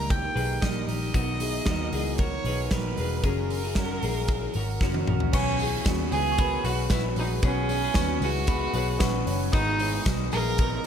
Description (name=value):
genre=jangly indie pop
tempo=114 BPM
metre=4/4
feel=straight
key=B major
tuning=A4 = 441 Hz
part: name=rich violin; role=melody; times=0.0-10.9 s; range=C#4 to A#5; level=-31 LUFS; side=right 3 dB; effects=none
part: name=electric guitar through a small old amp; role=accompaniment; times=0.0-10.9 s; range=G#2 to B4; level=-35 LUFS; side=right 9 dB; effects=wide subtle chorus
part: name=twelve-string electric guitar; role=arpeggios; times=0.0-10.9 s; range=C#4 to C#5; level=-33 LUFS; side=left 10 dB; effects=none
part: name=vintage muted picked electric bass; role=bass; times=0.0-10.8 s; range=E1 to D#2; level=-30 LUFS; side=equal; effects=none
part: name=big rock drum kit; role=drums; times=0.1-10.9 s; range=crash cymbal, hi-hat, kick drum, snare drum, toms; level=-28 LUFS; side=equal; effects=none
part: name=glockenspiel with hard plastic mallets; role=second line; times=5.3-10.9 s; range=B5 to D#6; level=-38 LUFS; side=left 9 dB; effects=none
part: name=warm upright piano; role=accompaniment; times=5.3-10.9 s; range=B3 to C#5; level=-36 LUFS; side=left 2 dB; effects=none
part: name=tambourine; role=percussion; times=5.3-10.7 s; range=none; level=-44 LUFS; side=left 15 dB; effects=none
room=light reverb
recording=none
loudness=-23 LUFS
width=side -8 dB against mid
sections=0.0-5.3 A section; 5.3-10.9 B section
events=drum fill 4.8-5.3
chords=0.0 D#; 1.1 Bmaj7; 3.2 F#; 5.3 Bsus2